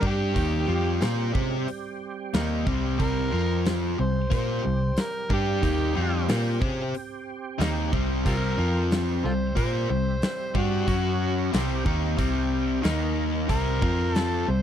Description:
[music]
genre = blues rock power trio and southern rock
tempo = 91 BPM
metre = 4/4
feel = straight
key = unclear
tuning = A4 = 440 Hz
[part]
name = overdriven harmonica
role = melody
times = 0.0-14.6 s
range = F4 to C5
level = -30 LUFS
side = equal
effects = none
[part]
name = overdriven tonewheel organ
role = sustained chords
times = 0.0-14.6 s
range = F3 to E5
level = -37 LUFS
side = right 6 dB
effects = slow rotary speaker, chorus vibrato
[part]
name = overdriven electric guitar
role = riff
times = 0.0-14.6 s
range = C3 to C5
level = -26 LUFS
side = left 2 dB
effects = none
[part]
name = vintage muted picked electric bass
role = bass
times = 0.0-14.6 s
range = C2 to C3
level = -28 LUFS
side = equal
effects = none
[part]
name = huge arena drum kit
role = drums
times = 0.0-14.3 s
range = hi-hat, kick drum, snare drum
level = -29 LUFS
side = equal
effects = none
[sound]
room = little or no reverb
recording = dry, close 1970s-style studio recording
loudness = -23 LUFS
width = side -9 dB against mid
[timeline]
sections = 0.0-14.6 A section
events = none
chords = 0.0 C5; 3.3 F5; 4.0 C5; 8.6 F5; 9.2 C; 10.9 F#5; 11.5 C5; 12.8 Eb5; 13.5 C5; 13.8 F5

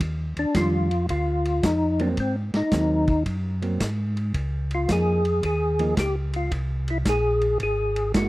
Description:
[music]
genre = soul jazz organ trio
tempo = 111 BPM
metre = 4/4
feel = swing 67% on 8ths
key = unclear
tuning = A4 = 440 Hz
[part]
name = mellow tonewheel organ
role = bass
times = 0.0-8.3 s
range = F#1 to Ab2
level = -25 LUFS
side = equal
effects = chorus vibrato, slow rotary speaker
[part]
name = vintage drum kit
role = drums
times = 0.0-8.3 s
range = hi-hat, kick drum, ride cymbal, snare drum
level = -28 LUFS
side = equal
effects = none
[part]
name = percussive tonewheel organ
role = melody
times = 0.4-8.3 s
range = C4 to Ab4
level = -24 LUFS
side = left 1 dB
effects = slow rotary speaker, chorus vibrato
[part]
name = hollow-body jazz guitar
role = accompaniment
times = 0.6-8.3 s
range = Eb3 to F4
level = -27 LUFS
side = right 2 dB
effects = none
[sound]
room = studio reverb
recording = dry, close 1970s-style studio recording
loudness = -21 LUFS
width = side -18 dB against mid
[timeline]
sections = 0.0-8.3 A section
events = none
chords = 0.0 Ebmaj9; 2.2 Ab9; 4.3 Db69; 6.5 C7(#5, no3)

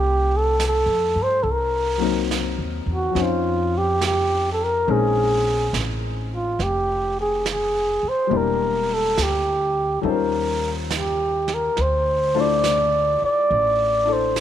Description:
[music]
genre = jazz ballad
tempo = 70 BPM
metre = 4/4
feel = swing 66% on 8ths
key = F major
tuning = A4 = 441 Hz
[part]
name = trumpet with bucket mute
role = melody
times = 0.0-14.4 s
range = F4 to D5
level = -20 LUFS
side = right 1 dB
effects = none
[part]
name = warm grand piano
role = accompaniment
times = 0.0-14.4 s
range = F3 to E5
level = -27 LUFS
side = left 11 dB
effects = none
[part]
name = upright bass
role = bass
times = 0.0-14.4 s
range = E1 to G2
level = -26 LUFS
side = equal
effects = none
[part]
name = jazz brush drum kit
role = drums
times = 0.6-14.4 s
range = brushed snare drum, hi-hat, snare drum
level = -31 LUFS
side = right 7 dB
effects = none
[sound]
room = light reverb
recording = 1960s-style stereo with parts hard left and right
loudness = -19 LUFS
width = side -10 dB against mid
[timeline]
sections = 0.0-14.4 A section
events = none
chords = 0.0 Fmaj9; 1.4 Cm7b5; 3.2 F5; 4.9 Bbm11; 8.3 Em7b5; 10.0 Eb13; 11.8 Dm9

